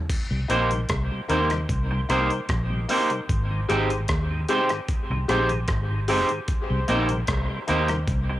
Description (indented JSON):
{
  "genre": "dub reggae",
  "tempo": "75 BPM",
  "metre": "4/4",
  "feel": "straight",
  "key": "C minor",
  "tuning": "A4 = 437 Hz",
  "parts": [
    { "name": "breakbeat sampler-style drum kit", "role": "drums", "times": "0.1-8.3 s", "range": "crash cymbal, hi-hat, kick drum, rim click", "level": "-28 LUFS", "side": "equal", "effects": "none" },
    { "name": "tonewheel organ", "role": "accompaniment", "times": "0.3-8.4 s", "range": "Ab2 to G4", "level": "-33 LUFS", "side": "equal", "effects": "overdrive, slow rotary speaker, cassette tape, dub echo" },
    { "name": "vintage muted fingered electric bass", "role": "bass", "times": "0.3-8.4 s", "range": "Ab1 to Eb2", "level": "-26 LUFS", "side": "equal", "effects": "none" },
    { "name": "electric guitar at the edge of break-up", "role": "accompaniment", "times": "0.5-8.3 s", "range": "Bb3 to C5", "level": "-26 LUFS", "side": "right 3 dB", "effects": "cassette tape, dub echo" },
    { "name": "bright concert grand piano", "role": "stabs", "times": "0.5-7.9 s", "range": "Eb4 to C5", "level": "-29 LUFS", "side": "left 3 dB", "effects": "cassette tape, dub echo" }
  ],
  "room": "light reverb",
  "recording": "home recording on cassette",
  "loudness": "-21 LUFS",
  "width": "side -14 dB against mid",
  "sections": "0.1-8.4 A section",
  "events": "none",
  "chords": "0.1 Cm7; 3.3 Abmaj7; 6.5 Cm7",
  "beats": "| 0.10 0.90 1.69 2.49 | 3.29 4.09 4.89 5.69 | 6.48 7.28 8.08"
}